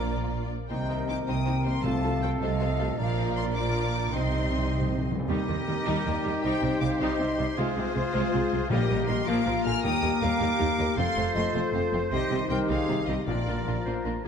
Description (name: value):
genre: cinematic, heroic adventure film score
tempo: 105 BPM (dotted quarters)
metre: 6/8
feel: straight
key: C dorian, Eb major from 5.3 s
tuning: A4 = 440 Hz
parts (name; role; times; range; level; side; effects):
- rich symphonic violin section; melody; 0.0-13.8 s; C5 to F6; -35 LUFS; left 3 dB; none
- mellow silver concert flute; second line; 0.0-13.8 s; F4 to Ab5; -34 LUFS; left 1 dB; none
- warm symphonic violin section; second line; 0.0-14.3 s; C4 to Eb5; -38 LUFS; left 4 dB; none
- rich studio viola section; accompaniment; 0.0-14.3 s; D3 to F4; -34 LUFS; left 1 dB; none
- dark French horn section; sustained chords; 0.0-14.2 s; Eb3 to A4; -32 LUFS; left 4 dB; none
- warm trumpet; stabs; 0.0-14.2 s; A4 to C5; -37 LUFS; right 3 dB; none
- rich symphonic double bass section; bass; 0.0-14.3 s; F1 to Eb2; -32 LUFS; right 3 dB; none
- warm symphonic cello section; bass; 0.0-14.3 s; Eb2 to Eb3; -33 LUFS; right 2 dB; none
- timpani; percussion; 1.8-5.3, 8.7-9.2, 13.3-13.8 s; Bb2 to C3; -33 LUFS; equal; none
- bright oboe; second line; 5.3-14.2 s; G4 to C5; -37 LUFS; right 2 dB; none
- clear clarinet; second line; 5.3-14.3 s; Eb4 to C5; -37 LUFS; left 2 dB; none
room: wet scoring stage reverb, RT60 2.1 s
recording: dark, warm production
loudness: -24 LUFS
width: side -7 dB against mid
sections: 0.0-5.3 A section; 5.3-14.3 B section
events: timpani fill 4.1-5.3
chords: 0.0 Bb; 0.7 Cm7; 1.8 F/C; 3.0 Bb; 4.1 Cm; 5.3 Eb; 6.4 Cm; 7.6 Fm/C; 8.7 Eb/Bb; 9.3 Bb; 9.8 Eb; 11.0 F; 12.1 Cm; 13.3 Bb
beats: 0.13 | 0.70 1.28 | 1.85 2.41 | 2.98 3.55 | 4.13 4.71 | 5.29 5.86 | 6.43 7.00 | 7.57 8.14 | 8.70 9.27 | 9.84 10.40 | 10.97 11.54 | 12.12 12.69 | 13.27 13.85